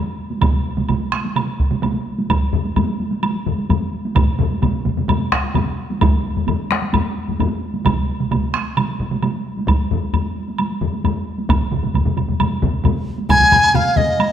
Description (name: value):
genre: japanese traditional, taiko drum ensemble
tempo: 130 BPM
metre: 4/4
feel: straight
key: unclear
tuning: A4 = 440 Hz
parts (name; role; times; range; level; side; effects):
- taiko ensemble; percussion; 0.3-14.3 s; none; -23 LUFS; right 2 dB; none
- solo taiko drums; percussion; 0.4-14.1 s; none; -23 LUFS; right 6 dB; none
- taiko ensemble; percussion; 0.4-13.4 s; none; -20 LUFS; right 1 dB; none
- woodblock; percussion; 0.4-14.3 s; none; -27 LUFS; right 4 dB; none
- taiko ensemble; percussion; 2.5-14.1 s; none; -21 LUFS; left 5 dB; none
- reedy large dizi; melody; 13.3-14.3 s; Eb5 to Ab5; -12 LUFS; left 1 dB; none
room: moderate scoring stage reverb, RT60 1.8 s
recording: none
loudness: -16 LUFS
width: side -9 dB against mid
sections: 0.0-13.3 A section; 13.3-14.3 B section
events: speeding up 0.0-14.3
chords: none